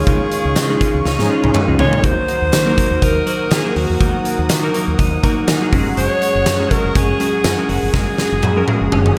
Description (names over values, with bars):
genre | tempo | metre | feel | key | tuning
1980s-style pop | 122 BPM | 4/4 | swing 55% on 16ths | Eb minor | A4 = 437 Hz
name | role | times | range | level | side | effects
raspy alto saxophone | melody | 0.0-9.1 s | Gb4 to Db5 | -23 LUFS | equal | analog delay
glassy digital keys | accompaniment | 0.0-9.2 s | Gb3 to Bb5 | -23 LUFS | equal | chorus
phased analog pad | sustained chords | 0.0-9.2 s | Ab4 to Eb6 | -27 LUFS | equal | phaser, chorus
clean electric guitar | riff | 0.0-9.2 s | Eb3 to Gb4 | -30 LUFS | equal | analog chorus, analog delay
mellow fretless electric bass | bass | 0.0-9.1 s | Gb1 to Eb3 | -22 LUFS | equal | none
huge arena drum kit | drums | 0.1-9.2 s | hi-hat, kick drum, snare drum, tambourine, toms | -21 LUFS | equal | none
group handclap | percussion | 0.6-8.6 s | none | -38 LUFS | equal | none
mellow synth brass | stabs | 1.2-2.1, 9.1-9.2 s | Eb3 to Ab4 | -26 LUFS | equal | chorus
room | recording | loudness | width
moderate plate reverb, RT60 1.2 s, small room ambience | dreamy mix soaked in reverb | -16 LUFS | mono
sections
0.0-9.2 A section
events
band accent 0.1-2.0, 7.9-9.2; drum fill 1.1-2.0, 7.9-9.2; synth keys fill 5.0-6.0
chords
0.0 Dbadd9; 2.0 Ebm; 5.7 Gbsus2